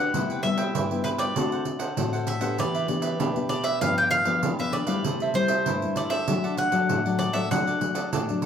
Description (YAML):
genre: samba and choro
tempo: 98 BPM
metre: 4/4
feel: straight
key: unclear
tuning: A4 = 440 Hz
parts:
  - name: bowl-back mandolin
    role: melody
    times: 0.0-8.4 s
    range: B4 to G5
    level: -27 LUFS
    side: left 1 dB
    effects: none
  - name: cavaquinho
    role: accompaniment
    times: 0.0-8.5 s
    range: D4 to G5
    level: -31 LUFS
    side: right 3 dB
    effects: none
  - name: nylon-string guitar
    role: accompaniment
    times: 0.0-8.5 s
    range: G2 to G4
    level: -27 LUFS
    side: left 4 dB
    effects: none
  - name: pandeiro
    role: percussion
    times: 0.1-8.5 s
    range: none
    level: -30 LUFS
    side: right 5 dB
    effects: none
room: wet large studio reverb, RT60 0.8 s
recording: band playing live in one room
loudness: -23 LUFS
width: side -8 dB against mid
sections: 0.0-8.5 A section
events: none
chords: 0.1 Cmaj7; 1.4 D7; 2.6 Em7; 3.8 G7; 5.0 C6; 6.3 D